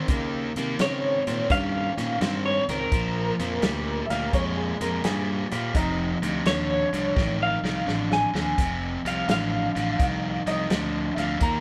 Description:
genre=electric blues shuffle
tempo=85 BPM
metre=4/4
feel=swing 67% on 8ths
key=unclear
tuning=A4 = 440 Hz
part: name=biting overdriven guitar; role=riff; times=0.0-11.6 s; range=F2 to Db4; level=-30 LUFS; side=equal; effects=none
part: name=fingered electric bass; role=bass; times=0.0-11.6 s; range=F1 to Db3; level=-33 LUFS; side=equal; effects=none
part: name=warm soul drum kit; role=drums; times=0.1-11.6 s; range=hi-hat, kick drum, snare drum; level=-30 LUFS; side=equal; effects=none
part: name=electric guitar through a small old amp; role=melody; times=0.8-10.7 s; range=Bb4 to Ab5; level=-30 LUFS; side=equal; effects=tremolo
part: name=bright upright piano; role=second line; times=4.1-11.6 s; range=Eb4 to Bb5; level=-33 LUFS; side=equal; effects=none
room=moderate large studio reverb, RT60 1.1 s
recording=band playing live in one room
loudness=-25 LUFS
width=mono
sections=0.0-11.6 A section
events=drum fill 7.2-8.6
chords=0.0 Eb7; 2.9 Bb7; 5.7 F7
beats=| 0.08 0.79 1.50 2.21 | 2.91 3.62 4.33 5.04 | 5.75 6.45 7.16 7.87 | 8.58 9.29 9.99 10.70 | 11.41

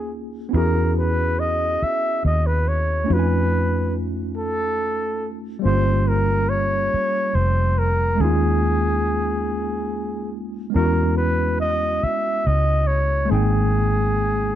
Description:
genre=slow six-eight R&B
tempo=47 BPM (dotted quarters)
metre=6/8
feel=straight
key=unclear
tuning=A4 = 440 Hz
part: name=breathy flugelhorn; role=melody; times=0.0-14.6 s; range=Ab4 to E5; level=-23 LUFS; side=equal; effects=slapback echo
part: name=tine electric piano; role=accompaniment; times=0.0-14.6 s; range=G3 to G#5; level=-25 LUFS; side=equal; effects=overdrive, fast stereo tremolo
part: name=vintage muted fingered electric bass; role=bass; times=0.0-14.6 s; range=F1 to F2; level=-21 LUFS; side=equal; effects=none
room=small room ambience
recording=dry, close 1970s-style studio recording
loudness=-18 LUFS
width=side -11 dB against mid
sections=0.0-14.6 A section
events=none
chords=0.0 Eb9sus4; 0.5 E6; 3.1 F7alt; 5.6 Gm7b5; 8.2 Eb9sus4; 10.7 E6; 13.3 Abmaj7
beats=| 0.53 1.80 | 3.08 4.36 | 5.63 6.91 | 8.19 9.46 | 10.74 12.02 | 13.29

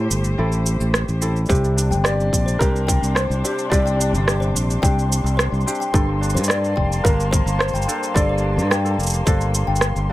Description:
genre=folktronica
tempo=108 BPM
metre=4/4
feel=straight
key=C mixolydian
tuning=A4 = 443 Hz
part: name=muted string quartet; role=sustained chords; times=0.0-10.1 s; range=C3 to A5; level=-29 LUFS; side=left 1 dB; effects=none
part: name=kora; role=arpeggios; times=0.0-10.1 s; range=G2 to A4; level=-27 LUFS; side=equal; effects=digital delay
part: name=fingered electric bass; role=bass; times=0.0-10.1 s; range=F1 to G2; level=-20 LUFS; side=equal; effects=none
part: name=electronic shaker and rim click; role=drums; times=0.1-10.1 s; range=none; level=-23 LUFS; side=right 2 dB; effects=none
part: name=kalimba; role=second line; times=1.5-9.8 s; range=C5 to G5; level=-29 LUFS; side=left 5 dB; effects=tape echo
part: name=electronic kick drum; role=drums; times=1.5-9.4 s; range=none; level=-19 LUFS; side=equal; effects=none
part: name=flickering grainy texture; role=texture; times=2.2-10.1 s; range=C6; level=-33 LUFS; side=equal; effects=built-in reverb
part: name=felt-muted upright piano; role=melody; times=2.0-8.9 s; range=Bb4 to D5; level=-25 LUFS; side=left 1 dB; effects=vintage 12-bit sampler grit, digital delay
room=light reverb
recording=none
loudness=-17 LUFS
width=side -16 dB against mid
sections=0.0-10.1 A section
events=break 0.0-1.5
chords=0.0 Am7; 1.5 Csus2; 5.9 Gmadd9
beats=0.38 0.94 | 1.49 2.05 2.60 3.16 | 3.72 4.27 4.83 5.38 | 5.94 6.49 7.05 7.60 | 8.16 8.72 9.27 9.83

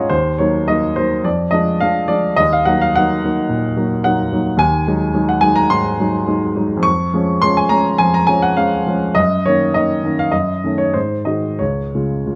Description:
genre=classical, romantic character piece for solo piano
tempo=89-111 BPM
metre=4/4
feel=rubato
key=unclear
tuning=A4 = 440 Hz
part: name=warm baby grand piano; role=solo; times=0.0-12.4 s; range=Db2 to Db6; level=-16 LUFS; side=equal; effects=none
room=little or no reverb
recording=close, detailed microphones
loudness=-16 LUFS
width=mono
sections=0.0-12.4 A section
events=none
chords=0.1 Ebm; 1.2 Ddim/F; 2.4 Ebm; 4.6 Ab7/Eb; 6.9 Db/F; 9.2 Ebm7/Gb; 10.3 Ebm7b5/Gb; 10.9 Ab7; 11.6 Db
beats=| 0.10 0.67 1.25 1.81 | 2.38 2.95 3.49 4.04 | 4.60 5.15 5.72 6.29 | 6.86 7.44 8.01 8.58 | 9.17 9.74 10.32 10.94 | 11.60 12.27

